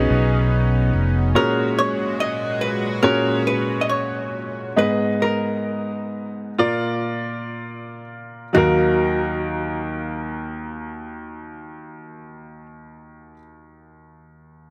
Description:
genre	pop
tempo	59-72 BPM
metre	4/4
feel	straight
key	Eb minor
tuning	A4 = 441 Hz
part	warm grand piano	accompaniment	0.0-14.7 s	Eb2 to F5	-25 LUFS	equal	none
part	chorused pulse-width pad	sustained chords	0.0-4.7 s	Bb2 to Gb4	-30 LUFS	equal	none
part	fingered electric bass	bass	0.0-1.3 s	F1 to B1	-20 LUFS	equal	none
part	hollow-body jazz guitar	melody	1.4-13.3 s	Gb4 to Eb5	-25 LUFS	equal	none
room	light reverb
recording	none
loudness	-21 LUFS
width	mono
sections	0.0-8.5 A section; 8.5-12.6 B section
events	slowing down 1.4-8.5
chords	0.0 Badd9; 1.4 Gbadd9; 4.8 Abmadd9; 6.6 Bb; 8.5 Ebmadd9

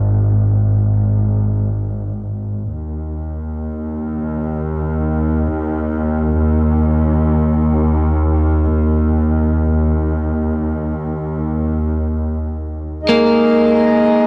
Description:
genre	ambient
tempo	free time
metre	none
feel	none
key	unclear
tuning	A4 = 440 Hz
part	clear studio double bass section	bass	0.0-13.0 s	G#1 to D#2	-18 LUFS	equal	none
part	pedal harmonium	drone	13.0-14.3 s	G#3 to D#4	-18 LUFS	equal	none
part	twelve-string electric guitar	arpeggios	13.1-14.3 s	A#3	-14 LUFS	equal	none
room	light reverb, small room ambience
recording	worn, warbling old tape, cassette tape, warbly pitch drift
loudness	-17 LUFS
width	mono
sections	0.0-13.1 A section; 13.1-14.3 B section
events	none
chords	0.0 G#5; 2.7 N.C.; 13.1 G#sus2

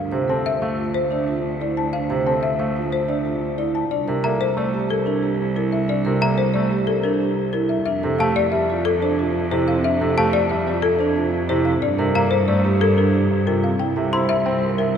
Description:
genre	classical, minimalist pattern music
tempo	182 BPM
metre	6/4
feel	straight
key	unclear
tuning	A4 = 440 Hz
part	folk marimba with medium hard mallets	melody	0.0-15.0 s	A4 to Bb5	-24 LUFS	left 6 dB	none
part	vibraphone with soft mallets	arpeggios	0.0-15.0 s	C4 to E5	-23 LUFS	right 4 dB	none
part	clear cello	bass	0.0-15.0 s	C2 to G2	-24 LUFS	right 1 dB	none
part	bright concert grand piano	accompaniment	0.1-14.7 s	C3 to E4	-26 LUFS	right 1 dB	none
part	trough xylophone with wooden mallets	arpeggios	4.2-14.3 s	A5 to C6	-30 LUFS	left 2 dB	none
room	wet cathedral reverb, RT60 6.8 s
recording	none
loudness	-18 LUFS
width	side -8 dB against mid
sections	0.0-15.0 A section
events	none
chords	0.0 Dm7; 3.9 C13; 7.9 Fmaj9; 11.8 Gmadd9; 13.8 C7

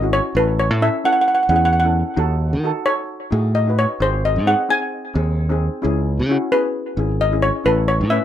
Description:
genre	calypso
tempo	132 BPM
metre	4/4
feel	swing 54% on 16ths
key	C# minor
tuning	A4 = 440 Hz
part	steel pan	melody	0.0-8.2 s	B4 to G#5	-18 LUFS	equal	analog delay
part	steel pan	accompaniment	0.0-8.2 s	B#3 to B4	-24 LUFS	left 2 dB	none
part	modern bright fingered electric bass	bass	0.0-8.2 s	G#1 to D#3	-19 LUFS	equal	none
room	moderate small room reverb, RT60 0.6 s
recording	rough home demo mix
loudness	-16 LUFS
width	side -10 dB against mid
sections	0.0-8.2 A section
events	none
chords	0.4 A; 2.2 D#m7b5; 4.0 G#; 5.8 C#m7; 7.7 Aadd9

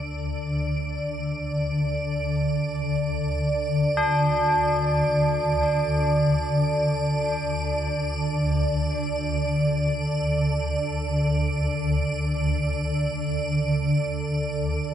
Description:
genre	dark ambient drone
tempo	free time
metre	none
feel	none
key	unclear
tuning	A4 = 440 Hz
part	tubular bells	arpeggios	0.0-14.9 s	D4 to A4	-27 LUFS	left 1 dB	diffuse ambient delay, shimmer reverb
part	swarming drone	drone	0.0-14.9 s	D2 to D3	-24 LUFS	equal	built-in reverb
part	icy glass pad	texture	0.0-14.9 s	D5	-28 LUFS	right 2 dB	chorus, built-in reverb, shimmer reverb
room	wet huge ambient reverb, RT60 7.6 s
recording	none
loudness	-22 LUFS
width	side -10 dB against mid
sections	0.0-14.9 A section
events	filter sweep on synth drone 0.0-14.9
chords	0.0 D5

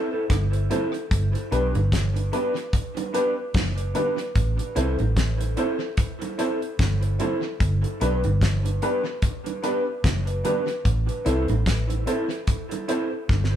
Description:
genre	roots reggae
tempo	74 BPM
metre	4/4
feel	swing 58% on 16ths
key	G major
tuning	A4 = 440 Hz
part	electric guitar through a small old amp	accompaniment	0.0-13.1 s	D4 to C5	-28 LUFS	right 2 dB	spring reverb, tape echo
part	dark upright piano	stabs	0.0-13.6 s	B3 to C5	-28 LUFS	left 3 dB	none
part	vintage muted fingered electric bass	bass	0.3-13.6 s	F#1 to C2	-23 LUFS	equal	none
part	damped 70s drum kit	drums	0.3-13.6 s	hi-hat, kick drum, rim click, snare drum	-25 LUFS	equal	tape echo
part	bongos	percussion	0.3-13.5 s	none	-35 LUFS	right 5 dB	tape echo
room	moderate studio reverb, RT60 0.5 s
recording	band playing live in one room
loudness	-22 LUFS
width	side -10 dB against mid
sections	0.0-13.6 A section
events	drum fill 13.3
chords	0.0 Am; 1.1 G; 4.4 Am; 7.6 G; 10.9 Am

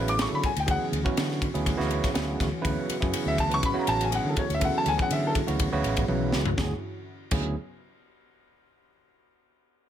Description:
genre	electric jazz fusion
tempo	122 BPM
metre	4/4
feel	swing 53% on 16ths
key	D lydian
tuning	A4 = 441 Hz
part	overdriven tine electric piano	accompaniment	0.0-7.5 s	C#3 to B4	-30 LUFS	right 5 dB	plate reverb
part	dark analog pad	sustained chords	0.0-6.8 s	D3 to F#4	-36 LUFS	left 2 dB	chorus, plate reverb
part	fretless electric bass	bass	0.0-7.5 s	A1 to D3	-30 LUFS	left 1 dB	none
part	clear baby grand piano	melody	0.1-5.3 s	A4 to D6	-27 LUFS	left 2 dB	slapback echo, plate reverb
part	crisp fusion drum kit	drums	0.1-7.4 s	crash cymbal, kick drum, ride cymbal, snare drum, toms	-29 LUFS	left 1 dB	none
room	moderate club reverb, RT60 0.6 s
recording	none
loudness	-24 LUFS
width	side -10 dB against mid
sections	0.0-6.6 A section; 6.6-8.5 B section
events	grand piano solo 0.0-6.6; drum fill 6.1-6.6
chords	0.0 Dmaj9

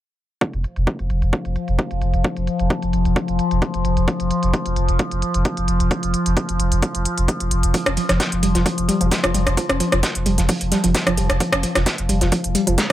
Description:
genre	driving peak-time techno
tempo	131 BPM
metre	4/4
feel	straight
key	unclear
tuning	A4 = 441 Hz
part	overtone-sweeping drone	drone	1.1-12.9 s	F3	-24 LUFS	left 2 dB	chorus, built-in reverb, sidechain pumping
part	electronic kick drum	drums	0.4-12.9 s	none	-23 LUFS	equal	overdrive, high-pass filter on kick
part	techno drum kit	drums	0.4-12.9 s	hi-hat, rim click	-23 LUFS	equal	overdrive, sidechain pumping on hats, low-pass filter on hats, low-pass filter on snare
part	warm sub bass	bass	0.5-12.8 s	F1	-20 LUFS	equal	overdrive, sidechain pumping, low-pass filter
part	warbly dusty pluck	riff	7.7-12.9 s	F3 to Db4	-22 LUFS	right 1 dB	chorus, tube saturation, sidechain pumping, digital delay
part	breakbeat sampler-style drum kit	drums	7.7-12.9 s	hi-hat, snare drum	-27 LUFS	right 1 dB	high-pass filter on hats, high-pass filter on snare
room	digital ambience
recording	none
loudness	-17 LUFS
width	side -13 dB against mid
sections	0.4-12.9 A section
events	none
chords	none

